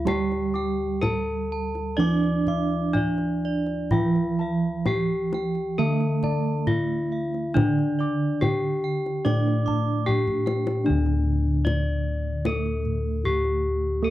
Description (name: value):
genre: Javanese gamelan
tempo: 62-76 BPM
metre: 4/4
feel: straight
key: unclear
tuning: A4 = 441 Hz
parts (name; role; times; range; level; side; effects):
- gamelan-type bronze metallophone; melody; 0.0-14.1 s; D4 to D5; -27 LUFS; left 1 dB; none
- gamelan-type bronze metallophone; accompaniment; 0.0-14.1 s; D3 to D4; -28 LUFS; right 5 dB; none
- gamelan-type bronze metallophone; arpeggios; 0.0-10.8 s; D5 to D6; -35 LUFS; right 6 dB; none
- gamelan-type bossed gongs; bass; 0.0-14.1 s; D2 to A4+20c; -26 LUFS; left 1 dB; none
- gamelan-type bossed gongs; arpeggios; 0.1-10.5 s; D5 to D6; -38 LUFS; left 5 dB; none
- kendang; percussion; 0.1-13.5 s; none; -28 LUFS; left 1 dB; none
room: little or no reverb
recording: dry, close 1970s-style studio recording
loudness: -22 LUFS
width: side -14 dB against mid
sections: 0.0-10.9 A section; 10.9-14.1 B section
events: drum fill 10.1-10.9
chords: none